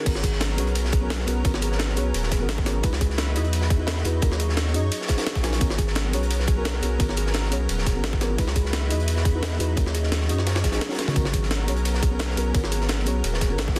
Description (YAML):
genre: liquid drum and bass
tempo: 173 BPM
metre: 4/4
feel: straight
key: G# minor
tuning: A4 = 439 Hz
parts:
  - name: mellow FM electric piano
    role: accompaniment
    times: 0.0-13.8 s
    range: B3 to D#5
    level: -35 LUFS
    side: equal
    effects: chorus, digital delay
  - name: lush unison pad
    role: sustained chords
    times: 0.0-13.8 s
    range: F#3 to C#5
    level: -35 LUFS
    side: equal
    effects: chorus, vintage 12-bit sampler grit, sidechain pumping
  - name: kalimba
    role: arpeggios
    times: 0.0-13.8 s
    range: G#4 to G#5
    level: -37 LUFS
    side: equal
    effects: digital delay
  - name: saturated sub bass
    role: bass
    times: 0.1-13.8 s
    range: D#1 to F#2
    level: -27 LUFS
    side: equal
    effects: none
  - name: breakbeat sampler-style drum kit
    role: drums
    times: 0.1-13.8 s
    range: crash cymbal, hi-hat, ride cymbal, snare drum, toms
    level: -32 LUFS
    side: equal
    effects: none
  - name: crunchy breakbeat drum kit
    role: drums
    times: 0.1-13.8 s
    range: hi-hat, snare drum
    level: -36 LUFS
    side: equal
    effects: high-pass filter on hats, high-pass filter on snare, high-pass filter on room
  - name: electronic kick drum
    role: drums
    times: 0.1-13.7 s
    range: none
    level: -25 LUFS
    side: equal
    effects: none
room: light reverb, small room ambience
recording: dense, heavily limited modern master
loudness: -24 LUFS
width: mono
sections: 0.1-13.8 A section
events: drop 0.1-13.8; break 10.8-11.2; drum fill 11.0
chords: 0.1 G#m11; 2.8 C#m11; 4.2 D#m7; 5.6 G#m11; 8.4 C#m11; 9.8 D#m7; 11.2 G#m11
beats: | 0.06 0.41 0.76 1.10 | 1.45 1.80 2.14 2.49 | 2.84 3.18 3.53 3.88 | 4.22 4.57 4.92 5.26 | 5.61 5.96 6.30 6.65 | 7.00 7.34 7.69 8.04 | 8.38 8.73 9.08 9.43 | 9.77 10.12 10.47 10.81 | 11.16 11.51 11.85 12.20 | 12.55 12.89 13.24 13.59